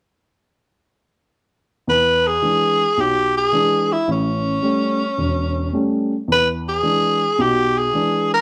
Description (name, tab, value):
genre	blues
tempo	109 BPM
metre	4/4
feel	swing 67% on 8ths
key	E mixolydian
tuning	A4 = 440 Hz
part	growling tenor saxophone	melody	1.9-8.4 s	C#4 to B4	-20 LUFS	equal	none
part	dark upright piano	accompaniment	1.9-8.3 s	E1 to D4	-24 LUFS	equal	none
room	moderate large studio reverb, RT60 0.8 s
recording	band playing live in one room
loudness	-18 LUFS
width	mono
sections	1.9-8.4 A section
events	none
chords	1.9 E7; 4.1 A7; 6.3 E7